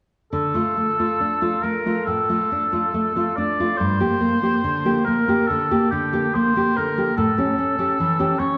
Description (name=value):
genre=romantic duo for oboe and classical guitar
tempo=70 BPM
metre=4/4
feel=rubato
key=D minor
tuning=A4 = 439 Hz
part: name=warm oboe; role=melody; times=0.3-8.6 s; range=G4 to D5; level=-24 LUFS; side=equal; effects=none
part: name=nylon-string guitar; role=accompaniment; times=0.3-8.6 s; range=G2 to G4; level=-24 LUFS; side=equal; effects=none
room=wet recital hall reverb, RT60 1.7 s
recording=recorded in a church or concert hall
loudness=-21 LUFS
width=mono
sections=0.3-8.6 A section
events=none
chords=0.3 Dm; 3.8 Gm; 7.2 A7